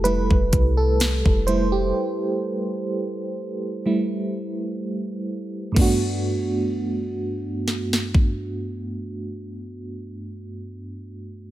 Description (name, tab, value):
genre	contemporary R&B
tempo	63 BPM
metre	4/4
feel	swing 54% on 16ths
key	G major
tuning	A4 = 439 Hz
part	FM electric piano with tremolo	accompaniment	0.0-11.5 s	G2 to C5	-24 LUFS	right 2 dB	none
part	clean 808-style bass	bass	0.0-1.9 s	F1 to C2	-22 LUFS	equal	none
part	trap drum kit	drums	0.1-8.4 s	crash cymbal, hi-hat, kick drum, snare drum	-20 LUFS	equal	overdrive
room	digital ambience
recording	none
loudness	-21 LUFS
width	side -14 dB against mid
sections	0.0-5.8 A section; 5.8-9.6 B section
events	FM electric piano solo 0.0-5.8; break 2.0-5.8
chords	0.0 Fmaj9; 5.8 Gmaj9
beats	0.05 1.00 | 1.95 2.91 3.86 4.81 | 5.76 6.72 7.67 8.62